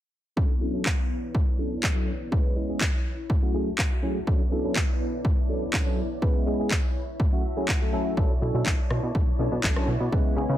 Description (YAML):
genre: filtered disco house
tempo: 123 BPM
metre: 4/4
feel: straight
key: B dorian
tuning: A4 = 439 Hz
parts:
  - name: tine electric piano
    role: accompaniment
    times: 0.4-10.6 s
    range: F#3 to B4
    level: -30 LUFS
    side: equal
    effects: phaser, sidechain pumping, low-pass filter
  - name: string machine, full ensemble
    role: sustained chords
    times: 0.4-10.6 s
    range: B3 to B5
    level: -35 LUFS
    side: equal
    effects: ensemble chorus, sidechain pumping, low-pass filter
  - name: electronic kick drum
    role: drums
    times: 0.4-10.2 s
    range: none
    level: -25 LUFS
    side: equal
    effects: overdrive
  - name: electronic handclaps and rim click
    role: drums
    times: 0.9-9.9 s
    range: none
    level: -29 LUFS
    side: equal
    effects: overdrive
  - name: plucky analog bass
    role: bass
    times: 8.2-10.6 s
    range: B1 to C#3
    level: -28 LUFS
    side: equal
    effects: sidechain pumping, low-pass filter
room: little or no reverb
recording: none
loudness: -23 LUFS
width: side -12 dB against mid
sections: 0.4-10.6 A section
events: filter sweep 0.4-10.6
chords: 0.4 Bm11; 2.3 C#m7; 3.3 F#m7; 4.3 Bm11; 6.2 C#m7; 7.2 F#m7; 8.2 Bm11